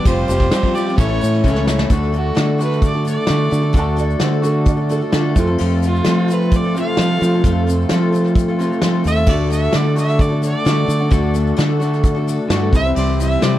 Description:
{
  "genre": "folk rock and heartland rock",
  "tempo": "130 BPM",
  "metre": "4/4",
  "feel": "straight",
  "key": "unclear",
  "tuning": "A4 = 441 Hz",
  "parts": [
    { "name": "clear fiddle", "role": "melody", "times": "0.0-13.6 s", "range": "F4 to F5", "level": "-23 LUFS", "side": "right 2 dB", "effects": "none" },
    { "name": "picked twelve-string acoustic guitar", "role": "accompaniment", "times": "0.0-13.6 s", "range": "A2 to C5", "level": "-24 LUFS", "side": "left 5 dB", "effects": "none" },
    { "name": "tonewheel organ", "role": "sustained chords", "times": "0.0-13.6 s", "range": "C4 to D5", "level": "-31 LUFS", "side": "right 1 dB", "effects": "none" },
    { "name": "electric guitar through a small old amp", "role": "riff", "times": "0.0-13.6 s", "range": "F2 to G4", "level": "-22 LUFS", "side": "right 1 dB", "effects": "none" },
    { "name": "fingered electric bass", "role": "bass", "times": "0.1-13.6 s", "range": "F1 to F3", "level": "-18 LUFS", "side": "equal", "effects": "none" },
    { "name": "soft brush drum kit", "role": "drums", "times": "0.1-13.5 s", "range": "crash cymbal, hi-hat, kick drum, ride cymbal, snare drum", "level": "-19 LUFS", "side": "equal", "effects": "none" },
    { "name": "tube shaker", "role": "percussion", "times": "0.1-13.5 s", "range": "none", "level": "-39 LUFS", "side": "left 12 dB", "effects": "none" },
    { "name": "warm upright piano", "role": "second line", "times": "3.8-5.6 s", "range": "E4 to A5", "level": "-26 LUFS", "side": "right 5 dB", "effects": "none" }
  ],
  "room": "little or no reverb",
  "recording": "none",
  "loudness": "-14 LUFS",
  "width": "side -13 dB against mid",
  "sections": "0.0-1.9 A section; 1.9-13.6 B section",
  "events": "drum fill 1.4-1.9; fiddle solo 1.9-13.6",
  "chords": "0.1 Fsus2; 1.0 A; 1.9 D; 5.4 F; 9.3 D; 12.7 C"
}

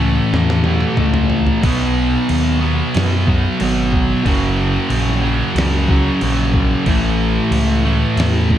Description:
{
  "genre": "stoner and doom metal",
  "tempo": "92 BPM",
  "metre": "4/4",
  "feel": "straight",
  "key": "unclear",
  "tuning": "A4 = 442 Hz",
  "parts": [
    { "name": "fuzz guitar", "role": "riff", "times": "0.0-8.6 s", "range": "F#2 to B3", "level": "-18 LUFS", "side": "equal", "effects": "distortion" },
    { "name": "scooped high-gain guitar", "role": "riff", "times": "0.0-8.6 s", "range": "F#2 to B3", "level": "-20 LUFS", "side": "equal", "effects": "distortion" },
    { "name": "overdriven fingered electric bass", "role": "bass", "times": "0.0-8.6 s", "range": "F#1 to F#2", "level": "-18 LUFS", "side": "equal", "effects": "none" },
    { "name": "trip hop sampler-style drum kit", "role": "drums", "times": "0.3-8.6 s", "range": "crash cymbal, kick drum, snare drum, toms", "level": "-22 LUFS", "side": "equal", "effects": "none" }
  ],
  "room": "light reverb",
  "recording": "dark, warm production",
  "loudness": "-14 LUFS",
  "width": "side -11 dB against mid",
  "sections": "0.0-8.6 A section",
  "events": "drum fill 0.3-1.6",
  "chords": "0.0 A; 1.6 B; 4.2 F#; 6.9 A"
}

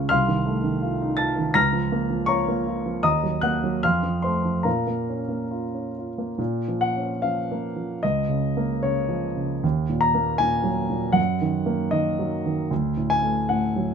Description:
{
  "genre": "classical, romantic character piece for solo piano",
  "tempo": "67-84 BPM",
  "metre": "2/4",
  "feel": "rubato",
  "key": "Bb minor",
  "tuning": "A4 = 439 Hz",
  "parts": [
    { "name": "dark grand piano", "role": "solo", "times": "0.0-13.9 s", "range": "C2 to Bb6", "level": "-21 LUFS", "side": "equal", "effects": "none" }
  ],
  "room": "light reverb",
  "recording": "close, detailed microphones",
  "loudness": "-21 LUFS",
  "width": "side -6 dB against mid",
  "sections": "0.0-6.4 A section; 6.4-13.9 B section",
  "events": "none",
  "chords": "0.1 F7/C; 1.6 Bbm/Db; 3.0 Ebm; 3.8 F; 4.7 Bbm; 8.0 Bbm/Db; 9.6 Ebm; 11.2 Ebm/Gb; 12.7 D"
}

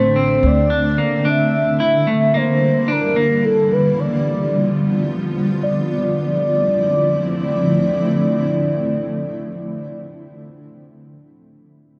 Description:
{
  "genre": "dream pop",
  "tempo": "110 BPM",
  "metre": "4/4",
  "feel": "straight",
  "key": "D minor",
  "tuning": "A4 = 440 Hz",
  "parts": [
    { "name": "warm velvety synth lead", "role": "melody", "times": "0.0-10.0 s", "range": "A4 to E5", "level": "-22 LUFS", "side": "equal", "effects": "chorus, plate reverb, analog delay" },
    { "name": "granular cloud pad", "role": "sustained chords", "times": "0.0-10.0 s", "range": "D3 to F4", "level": "-22 LUFS", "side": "equal", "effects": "built-in reverb" },
    { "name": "clean electric guitar", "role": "arpeggios", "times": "0.0-3.4 s", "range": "A3 to E4", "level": "-22 LUFS", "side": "equal", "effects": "subtle chorus, analog delay" },
    { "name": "upright bass", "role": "bass", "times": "0.0-0.9 s", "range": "A1 to D2", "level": "-22 LUFS", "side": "equal", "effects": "none" }
  ],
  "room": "wet small room reverb, RT60 0.5 s",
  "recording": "cassette tape",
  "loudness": "-18 LUFS",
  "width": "mono",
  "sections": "0.0-5.6 A section; 5.6-10.0 B section",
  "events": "none",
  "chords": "0.0 D7(no3); 1.3 Em7b5; 3.4 G7; 5.6 Dm9"
}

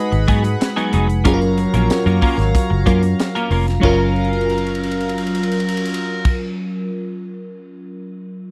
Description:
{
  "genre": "polished 1980s jazz-funk pop",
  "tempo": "93 BPM",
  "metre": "4/4",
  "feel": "straight",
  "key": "F# major",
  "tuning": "A4 = 441 Hz",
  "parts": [
    { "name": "warm horn section", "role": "second line", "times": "0.0-6.3 s", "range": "F#3 to D#5", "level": "-31 LUFS", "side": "equal", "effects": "none" },
    { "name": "bell-like FM electric piano", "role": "accompaniment", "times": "0.0-8.5 s", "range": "F#3 to B4", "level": "-24 LUFS", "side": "equal", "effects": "subtle chorus" },
    { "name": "chorused pulse-width pad", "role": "sustained chords", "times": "0.0-6.3 s", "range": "F#3 to B5", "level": "-29 LUFS", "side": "equal", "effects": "none" },
    { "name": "clean electric guitar", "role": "riff", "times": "0.1-6.9 s", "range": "F#3 to A#4", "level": "-26 LUFS", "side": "equal", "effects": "analog chorus" },
    { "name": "vintage muted fingered electric bass", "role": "bass", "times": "0.1-6.3 s", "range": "E#1 to G#2", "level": "-21 LUFS", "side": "equal", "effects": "none" },
    { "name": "tight funk drum kit", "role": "drums", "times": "0.1-7.9 s", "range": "crash cymbal, hi-hat, kick drum, ride cymbal, snare drum", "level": "-24 LUFS", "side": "equal", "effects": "none" }
  ],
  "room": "little or no reverb",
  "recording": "dry, close 1970s-style studio recording",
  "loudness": "-18 LUFS",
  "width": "mono",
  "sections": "0.0-3.8 A section; 3.8-6.4 B section",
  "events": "drum fill 4.2-6.3",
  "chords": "0.0 G#m7; 1.3 F#maj7"
}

